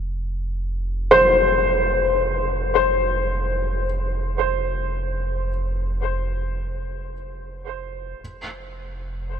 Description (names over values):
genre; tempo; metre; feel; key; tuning
ambient; free time; none; none; unclear; A4 = 440 Hz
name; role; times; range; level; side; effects
round analog bass; bass; 0.0-9.4 s; F1; -27 LUFS; right 1 dB; none
felt-muted upright piano; arpeggios; 1.1-8.2 s; C5; -20 LUFS; left 1 dB; ping-pong delay
room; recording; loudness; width
wet huge ambient reverb, RT60 8.8 s; none; -19 LUFS; side -8 dB against mid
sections
0.0-9.4 A section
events
fade-in on analog synth bass 0.0-9.4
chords
0.0 F5; 8.2 N.C.